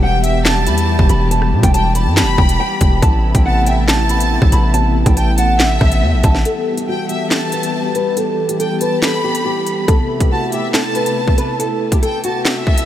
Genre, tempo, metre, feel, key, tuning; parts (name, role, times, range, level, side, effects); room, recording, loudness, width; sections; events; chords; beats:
hip hop, drill; 140 BPM; 4/4; half-time; E minor; A4 = 440 Hz
nylon-string guitar; melody; 0.0-12.8 s; F#4 to B5; -20 LUFS; equal; lush chorus, low-pass filter, diffuse ambient delay
rich studio violin section; second line; 0.0-12.9 s; E5 to B5; -22 LUFS; left 1 dB; diffuse ambient delay
warm analog pad; sustained chords; 0.0-12.9 s; C3 to G4; -21 LUFS; left 1 dB; chorus, tremolo, low-pass filter
distorted 808-style bass; bass; 0.0-6.4 s; E1 to B2; -15 LUFS; equal; distortion
drill drum kit; drums; 0.2-12.9 s; handclaps, hi-hat, kick drum, rim click, snare drum; -16 LUFS; equal
moderate huge ambient reverb, RT60 6.8 s; dreamy mix soaked in reverb; -12 LUFS; side -12 dB against mid
0.0-6.5 A section; 6.5-12.9 B section
filter sweep 6.5-12.9
0.0 Em; 3.0 Amadd9; 6.5 Em; 9.9 Amadd9
0.03 0.45 0.88 | 1.31 1.74 2.17 2.60 | 3.02 3.45 3.88 4.31 | 4.74 5.17 5.60 6.03 | 6.45 6.88 7.31 7.74 | 8.17 8.60 9.03 9.45 | 9.88 10.31 10.74 11.17 | 11.60 12.03 12.45